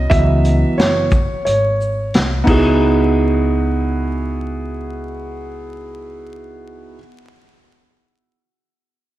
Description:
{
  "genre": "hip hop, jazz-hop",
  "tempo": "89 BPM",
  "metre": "4/4",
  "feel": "swing 58% on 16ths",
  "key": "C# minor",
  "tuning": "A4 = 440 Hz",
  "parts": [
    { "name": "dark grand piano", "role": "accompaniment", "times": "0.0-7.0 s", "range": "E3 to E5", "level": "-18 LUFS", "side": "right 1 dB", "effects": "none" },
    { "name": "upright bass", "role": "bass", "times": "0.0-7.0 s", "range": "F#1 to C#2", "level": "-19 LUFS", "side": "equal", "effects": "none" },
    { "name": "vintage drum kit", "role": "drums", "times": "0.1-2.7 s", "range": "crash cymbal, hi-hat, kick drum, shaker, snare drum", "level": "-18 LUFS", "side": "equal", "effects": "none" }
  ],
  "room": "moderate lush hall reverb, RT60 2.0 s",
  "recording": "dreamy mix soaked in reverb, vinyl crackle",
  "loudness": "-14 LUFS",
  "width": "side -15 dB against mid",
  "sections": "0.0-2.8 A section; 2.8-5.5 B section",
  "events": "grand piano solo 0.0-2.8",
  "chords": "0.0 C#m11",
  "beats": "| 0.11 0.78 1.46 2.13 | 2.81 3.48 4.15 4.83"
}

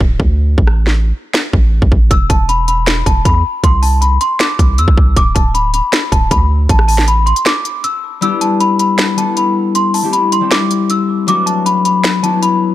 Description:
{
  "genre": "hip hop, trap",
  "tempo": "157 BPM",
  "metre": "4/4",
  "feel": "half-time",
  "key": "E minor",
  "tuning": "A4 = 439 Hz",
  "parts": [
    { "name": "long sustained 808-style bass", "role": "bass", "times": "0.0-7.3 s", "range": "D1 to E2", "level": "-13 LUFS", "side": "equal", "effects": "none" },
    { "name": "trap drum kit", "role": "drums", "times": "0.0-12.5 s", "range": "finger snaps, hi-hat, kick drum, rim click, snare drum", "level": "-14 LUFS", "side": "equal", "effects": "none" },
    { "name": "worn celesta", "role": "melody", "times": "2.1-12.6 s", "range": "A5 to E6", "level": "-15 LUFS", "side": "left 1 dB", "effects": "ping-pong delay" },
    { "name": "concert harp", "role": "accompaniment", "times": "8.2-12.7 s", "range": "F#3 to A4", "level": "-15 LUFS", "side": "left 5 dB", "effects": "none" }
  ],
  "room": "little or no reverb",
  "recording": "none",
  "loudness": "-10 LUFS",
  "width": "side -14 dB against mid",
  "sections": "0.0-12.7 A section",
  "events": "break 0.0-2.1, 7.5-8.2; kick muted 8.2-12.7",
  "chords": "0.0 N.C.; 2.1 E5; 3.6 C; 5.2 Bm/D; 6.7 A5; 8.2 Em7; 9.8 C6; 11.3 D6",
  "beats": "0.20 | 0.58 0.96 1.34 1.73 | 2.11 2.49 2.87 3.25 | 3.64 4.02 4.40 4.78 | 5.17 5.55 5.93 6.31 | 6.69 7.08 7.46 7.84 | 8.22 8.60 8.99 9.37 | 9.75 10.13 10.52 10.90 | 11.28 11.66 12.04 12.43"
}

